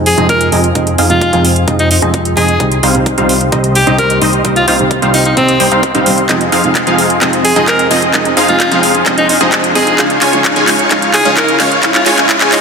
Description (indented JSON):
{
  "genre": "EDM, festival progressive house",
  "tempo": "130 BPM",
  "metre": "4/4",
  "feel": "straight",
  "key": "F minor",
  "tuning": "A4 = 440 Hz",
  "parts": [
    { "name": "lush unison pad", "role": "sustained chords", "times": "0.0-12.6 s", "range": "F4 to Db6", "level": "-21 LUFS", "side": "left 1 dB", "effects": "none" },
    { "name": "supersaw stab", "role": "riff", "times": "0.0-12.6 s", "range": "F3 to Ab5", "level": "-13 LUFS", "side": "equal", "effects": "sidechain pumping, low-pass filter, tape echo" },
    { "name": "fat analog bass", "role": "bass", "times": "0.0-12.6 s", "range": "C2 to F2", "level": "-19 LUFS", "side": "left 1 dB", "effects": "sidechain pumping" },
    { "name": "riser", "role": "sound effects", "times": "3.5-12.6 s", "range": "none", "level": "-21 LUFS", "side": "equal", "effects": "none" },
    { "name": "edgy alto saxophone", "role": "melody", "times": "0.1-12.6 s", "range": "C4 to Bb4", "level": "-15 LUFS", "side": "equal", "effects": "tape echo" },
    { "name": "house drum kit", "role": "drums", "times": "0.1-12.6 s", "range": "handclaps, hi-hat", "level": "-15 LUFS", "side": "right 1 dB", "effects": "none" },
    { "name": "dark grand piano", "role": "accompaniment", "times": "0.2-12.6 s", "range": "C3 to Ab4", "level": "-18 LUFS", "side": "right 3 dB", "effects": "sidechain pumping, tape echo" },
    { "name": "electronic kick drum", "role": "drums", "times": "0.3-12.4 s", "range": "none", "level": "-21 LUFS", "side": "left 1 dB", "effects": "high-pass filter on kick, high-pass filter on room" }
  ],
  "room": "moderate lush hall reverb, RT60 2.1 s",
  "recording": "dense, heavily limited modern master, high-pass filter",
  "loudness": "-8 LUFS",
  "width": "side -5 dB against mid",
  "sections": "0.0-12.6 A section",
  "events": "build-up 0.0-12.6; filter sweep on supersaw synth 0.0-12.6; riser 3.5-12.6; drum fill 6.3-12.6",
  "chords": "0.0 Fm7; 2.6 Cm; 6.3 Fm7; 10.0 Db",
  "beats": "0.29 | 0.75 1.22 1.68 2.14 | 2.60 3.06 3.52 3.98 | 4.45 4.91 5.37 5.83 | 6.29 6.75 7.21 7.68 | 8.14 8.60 9.06 9.52 | 9.98 10.45 10.91 11.37 | 11.83 12.29"
}